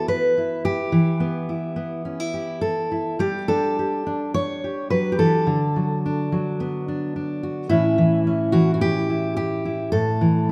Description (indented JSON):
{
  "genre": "folk, solo fingerstyle acoustic guitar",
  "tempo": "107 BPM",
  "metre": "4/4",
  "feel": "rubato",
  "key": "D major",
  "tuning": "A4 = 440 Hz",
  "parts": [
    { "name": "fingerpicked steel-string acoustic guitar", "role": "solo", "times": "0.0-10.5 s", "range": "A2 to C#5", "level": "-22 LUFS", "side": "equal", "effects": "none" }
  ],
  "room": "moderate scoring stage reverb, RT60 2.1 s",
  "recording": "none",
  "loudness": "-22 LUFS",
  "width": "mono",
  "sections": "0.0-10.5 A section",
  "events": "none",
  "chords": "0.0 Em; 3.2 Gsus2; 5.5 D6; 7.7 A7",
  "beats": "0.37 | 0.93 1.48 2.05 2.62 | 3.20 3.78 4.35 4.91 | 5.47 6.03 6.59 7.15 | 7.70 8.25 8.80 9.36 | 9.91 10.48"
}